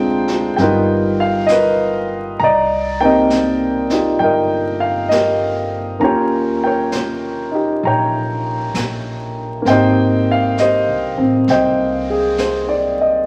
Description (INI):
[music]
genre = jazz ballad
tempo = 66 BPM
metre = 4/4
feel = swing 69% on 8ths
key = Eb major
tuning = A4 = 440 Hz
[part]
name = warm grand piano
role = accompaniment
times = 0.0-13.3 s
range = G3 to Bb5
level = -17 LUFS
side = equal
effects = none
[part]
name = upright bass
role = bass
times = 0.0-13.3 s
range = G1 to Eb2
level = -28 LUFS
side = equal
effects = none
[part]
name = jazz brush drum kit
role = drums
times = 0.3-13.3 s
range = brushed snare drum, hi-hat, snare drum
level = -31 LUFS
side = equal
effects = none
[sound]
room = wet large studio reverb, RT60 1.1 s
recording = vinyl crackle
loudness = -16 LUFS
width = mono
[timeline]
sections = 0.0-13.3 A section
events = none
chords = 0.0 Dm7b5; 0.6 G7alt; 2.4 Cm9; 6.0 Eb7; 9.7 Abmaj7